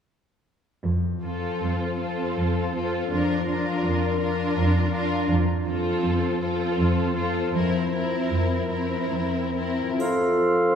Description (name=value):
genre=classical, slow romantic movement for symphony orchestra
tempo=62-84 BPM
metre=3/4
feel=rubato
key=F major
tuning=A4 = 440 Hz
part: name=concert harp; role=arpeggios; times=0.8-10.8 s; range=F2 to F5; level=-29 LUFS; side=left 6 dB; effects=none
part: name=warm symphonic cello section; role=bass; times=0.8-9.9 s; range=F2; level=-27 LUFS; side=right 2 dB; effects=none
part: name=rich symphonic violin section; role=melody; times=1.2-10.0 s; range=A4 to Bb4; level=-32 LUFS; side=left 4 dB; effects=none
part: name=rich symphonic violin section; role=second line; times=1.2-10.0 s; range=E4 to F4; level=-31 LUFS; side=equal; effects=none
part: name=warm symphonic viola section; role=accompaniment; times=1.2-10.0 s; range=C4 to D4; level=-29 LUFS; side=right 2 dB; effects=none
part: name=dark clarinet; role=second line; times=9.1-10.8 s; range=C4 to A4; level=-25 LUFS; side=right 1 dB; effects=none
part: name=silver concert flute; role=second line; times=10.0-10.8 s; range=C6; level=-29 LUFS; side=equal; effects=none
part: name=warm oboe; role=second line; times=10.0-10.8 s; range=F5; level=-28 LUFS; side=left 1 dB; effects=none
part: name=mellow bassoon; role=accompaniment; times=10.0-10.8 s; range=F3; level=-28 LUFS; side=equal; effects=none
part: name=dark French horn section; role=sustained chords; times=10.0-10.8 s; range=C4 to F4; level=-28 LUFS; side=right 2 dB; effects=none
part: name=triangle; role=percussion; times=10.0-10.8 s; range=none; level=-46 LUFS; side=left 1 dB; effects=none
room=wet concert hall reverb, RT60 1.9 s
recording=heard from further back in the room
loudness=-22 LUFS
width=side -8 dB against mid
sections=0.8-10.0 A section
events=none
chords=0.8 F; 3.1 Bb/F; 5.3 F; 7.5 C7/F; 10.0 F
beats=| 0.85 1.62 2.37 | 3.12 3.85 4.57 | 5.30 6.04 6.78 | 7.54 8.31 9.10 | 10.00